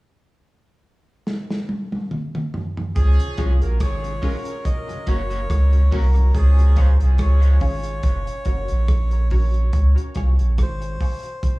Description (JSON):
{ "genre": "dub reggae", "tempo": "71 BPM", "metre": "4/4", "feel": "swing 56% on 16ths", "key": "Db major", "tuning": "A4 = 440 Hz", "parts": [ { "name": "crunchy breakbeat drum kit", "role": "drums", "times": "1.3-11.6 s", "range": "hi-hat, kick drum, rim click, snare drum, toms", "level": "-24 LUFS", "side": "equal", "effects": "none" }, { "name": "warm horn section", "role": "second line", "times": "3.0-7.0 s", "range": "F3 to Bb4", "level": "-34 LUFS", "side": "right 2 dB", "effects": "high-pass filter, tape echo" }, { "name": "warm sub bass", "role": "bass", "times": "3.0-11.0 s", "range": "Gb1 to Db2", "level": "-16 LUFS", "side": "equal", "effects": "none" }, { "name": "mellow tonewheel organ", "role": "accompaniment", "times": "3.2-6.7 s", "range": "Gb2 to Gb4", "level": "-36 LUFS", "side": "left 3 dB", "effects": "slow rotary speaker, high-pass filter" }, { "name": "electric guitar at the edge of break-up", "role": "accompaniment", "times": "3.4-6.9 s", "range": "F3 to Gb4", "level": "-37 LUFS", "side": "right 2 dB", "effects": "high-pass filter, tape echo" }, { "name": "filtered dub chord stab", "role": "stabs", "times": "3.4-11.2 s", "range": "Db4 to Db5", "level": "-35 LUFS", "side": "left 3 dB", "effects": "phaser, high-pass filter, tape echo" }, { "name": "melodica", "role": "melody", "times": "3.8-11.5 s", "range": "Ab4 to Eb5", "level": "-32 LUFS", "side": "left 1 dB", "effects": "tape echo" } ], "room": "little or no reverb", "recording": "echo-heavy mix, small room ambience", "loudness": "-17 LUFS", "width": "side -22 dB against mid", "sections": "0.0-3.0 A section; 3.0-11.6 B section", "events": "drum fill 1.3-3.0; filter sweep 6.3-11.6", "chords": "0.0 N.C.; 3.0 Db; 4.7 Gb; 6.3 Db; 8.0 Gb; 9.7 Db", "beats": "0.42 1.26 2.11 | 2.96 3.80 4.65 5.50 | 6.34 7.19 8.04 8.88 | 9.73 10.58 11.43" }